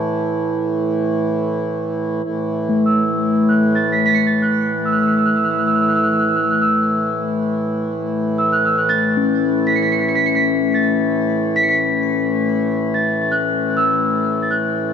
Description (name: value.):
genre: world meditative, free-time meditation music.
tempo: free time.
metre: none.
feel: none.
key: A major pentatonic.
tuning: A4 = 436 Hz.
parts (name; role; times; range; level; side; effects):
large celesta; melody; 0.0-14.9 s; A5 to C#7; -19 LUFS; right 2 dB; tape echo.
hand-pumped harmonium; drone; 0.0-14.9 s; A2 to E3; -20 LUFS; right 1 dB; none.
bronze singing bowl; texture; 2.7-14.9 s; A3 to C#4; -20 LUFS; left 4 dB; none.
room: wet scoring stage reverb, RT60 1.6 s, small room ambience.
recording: dark, warm production.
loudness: -15 LUFS.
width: side -7 dB against mid.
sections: 0.0-2.2 A section; 2.2-14.9 A section.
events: none.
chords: none.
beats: free time.